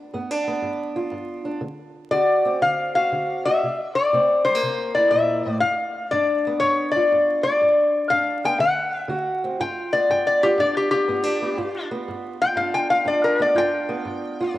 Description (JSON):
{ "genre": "acoustic country blues, solo or duo", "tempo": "120 BPM", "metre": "4/4", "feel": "swing 67% on 8ths", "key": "G mixolydian", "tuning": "A4 = 442 Hz", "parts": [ { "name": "fingerpicked old ladder-braced acoustic guitar", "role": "accompaniment", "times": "0.0-14.6 s", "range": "G2 to F#4", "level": "-27 LUFS", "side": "right 2 dB", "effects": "cassette tape" }, { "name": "lap resonator guitar", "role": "melody", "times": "2.1-14.5 s", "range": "G4 to G5", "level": "-19 LUFS", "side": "left 2 dB", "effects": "cassette tape" } ], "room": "moderate lush hall reverb, RT60 2.6 s", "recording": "home recording on cassette, vinyl crackle", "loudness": "-19 LUFS", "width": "side -15 dB against mid", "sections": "0.0-9.6 A section; 9.6-14.6 B section", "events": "resonator guitar played with a steel bar solo 9.6-14.6", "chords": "0.0 G7; 1.6 D7; 3.6 C7; 5.6 G7; 8.6 D7; 9.6 G7" }